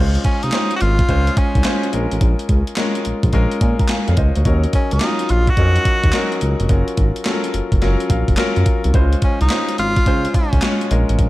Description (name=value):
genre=R&B, new jack swing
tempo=107 BPM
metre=4/4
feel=swing 65% on 16ths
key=Db major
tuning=A4 = 440 Hz
part: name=clear baby grand piano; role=accompaniment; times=0.0-11.3 s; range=Gb3 to Bb5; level=-22 LUFS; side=left 2 dB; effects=none
part: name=smooth synth bass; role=bass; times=0.0-11.3 s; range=F1 to Bb2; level=-17 LUFS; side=equal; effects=none
part: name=gated 80s digital drum machine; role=drums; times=0.1-11.3 s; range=handclaps, hi-hat, kick drum, snare drum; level=-18 LUFS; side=equal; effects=gated reverb, gated reverb snare, overdrive
part: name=bright tenor saxophone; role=melody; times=0.2-10.9 s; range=Db4 to Gb4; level=-22 LUFS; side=equal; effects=none
room=digital ambience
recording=dark, warm production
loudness=-14 LUFS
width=side -17 dB against mid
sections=0.0-11.3 A section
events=grand piano fill 7.8-8.9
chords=0.0 Dbmaj7; 1.9 Bbm7; 4.5 Ebm7; 6.7 Gbmaj7; 8.9 Dbmaj7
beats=0.53 1.09 1.65 | 2.21 2.77 3.33 3.90 | 4.46 5.02 5.58 6.14 | 6.70 7.26 7.82 8.38 | 8.94 9.50 10.06 10.62 | 11.19